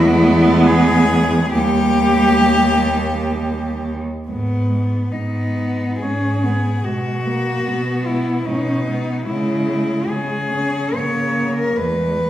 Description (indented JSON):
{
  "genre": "classical, lyrical piece for cello ensemble",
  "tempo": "64-78 BPM",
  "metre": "3/4",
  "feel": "rubato",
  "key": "G# minor",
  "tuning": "A4 = 444 Hz",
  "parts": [
    { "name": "warm cello", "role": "melody", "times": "0.0-12.3 s", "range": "B3 to C#5", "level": "-20 LUFS", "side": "left 2 dB", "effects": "none" },
    { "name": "warm cello", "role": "second line", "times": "0.0-12.2 s", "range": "G3 to B3", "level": "-22 LUFS", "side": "right 3 dB", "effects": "none" },
    { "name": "warm cello", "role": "accompaniment", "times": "0.0-12.3 s", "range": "G#3 to C#4", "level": "-22 LUFS", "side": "equal", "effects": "none" },
    { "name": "rich cello", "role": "bass", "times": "0.0-12.3 s", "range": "D#2 to C#3", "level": "-21 LUFS", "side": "right 1 dB", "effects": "none" }
  ],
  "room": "wet recital hall reverb, RT60 1.4 s",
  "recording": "heard from further back in the room",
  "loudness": "-15 LUFS",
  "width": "side -12 dB against mid",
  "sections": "0.0-4.3 A section; 4.3-12.3 B section",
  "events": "none",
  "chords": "0.0 E; 1.5 D#; 4.3 G#m; 6.8 G#m/B; 9.3 C#m; 11.8 E",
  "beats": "0.67 | 1.54 2.45 3.38 | 4.28 5.12 6.00 | 6.84 7.65 8.46 | 9.27 10.09 10.96 | 11.76"
}